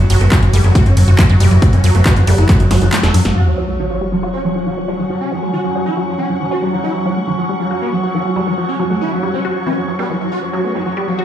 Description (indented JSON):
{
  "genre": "psychedelic trance",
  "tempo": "138 BPM",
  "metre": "4/4",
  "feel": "straight",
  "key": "unclear",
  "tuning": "A4 = 443 Hz",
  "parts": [
    { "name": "swarming rave lead", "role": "melody", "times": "0.0-11.2 s", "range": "F#3 to A4", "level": "-20 LUFS", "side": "equal", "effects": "chorus, phaser, sidechain pumping, digital delay" },
    { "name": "overtone-sweeping drone", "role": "sustained chords", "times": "0.0-11.2 s", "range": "F#3 to F#4", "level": "-24 LUFS", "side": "equal", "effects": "chorus, built-in reverb, sidechain pumping" },
    { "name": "fat analog bass", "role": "bass", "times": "0.0-3.3 s", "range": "E1 to F#2", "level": "-10 LUFS", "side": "equal", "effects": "tube saturation" },
    { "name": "wide unison pluck", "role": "riff", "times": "0.1-11.2 s", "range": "E3 to F#4", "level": "-21 LUFS", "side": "right 1 dB", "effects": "auto-pan, sidechain pumping, ping-pong delay" },
    { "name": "techno drum kit", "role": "drums", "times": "0.1-3.3 s", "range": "handclaps, hi-hat, ride cymbal, snare drum", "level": "-21 LUFS", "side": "equal", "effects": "overdrive, low-pass filter on snare, studio reverb, low-pass filter on hats, low-pass filter on cymbals" },
    { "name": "formant-sweep wobble bass", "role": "second line", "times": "0.2-2.5, 10.6-10.7 s", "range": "A3 to B3", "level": "-29 LUFS", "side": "right 2 dB", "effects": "none" },
    { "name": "electronic kick drum", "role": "drums", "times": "0.3-2.6 s", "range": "none", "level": "-13 LUFS", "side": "equal", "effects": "overdrive, studio reverb" },
    { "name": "sub drop", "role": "sound effects", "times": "3.4-5.1 s", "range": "none", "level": "-19 LUFS", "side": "equal", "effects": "none" },
    { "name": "muted studio string section", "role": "texture", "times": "3.4-11.2 s", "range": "C#4 to C#6", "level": "-27 LUFS", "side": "equal", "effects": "sidechain pumping" }
  ],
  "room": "light reverb",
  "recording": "played on a big sound system in a bare room, large studio reverb",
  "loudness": "-12 LUFS",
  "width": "side -10 dB against mid",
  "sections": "0.0-3.4 A section; 3.4-11.2 B section",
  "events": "drop 0.0-3.4; drum fill 2.7-3.4; kick drops out 2.9-3.4; band accent 3.3; impact 3.4-5.1; filter sweep on synth arpeggio sound 3.4-11.2",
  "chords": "0.0 F#5",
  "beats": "0.32 0.75 1.19 | 1.62 2.06 2.49 2.92 | 3.36 3.79 4.23 4.67 | 5.10 5.53 5.97 6.40 | 6.84 7.27 7.71 8.14 | 8.58 9.01 9.45 9.88 | 10.32 10.75 11.19"
}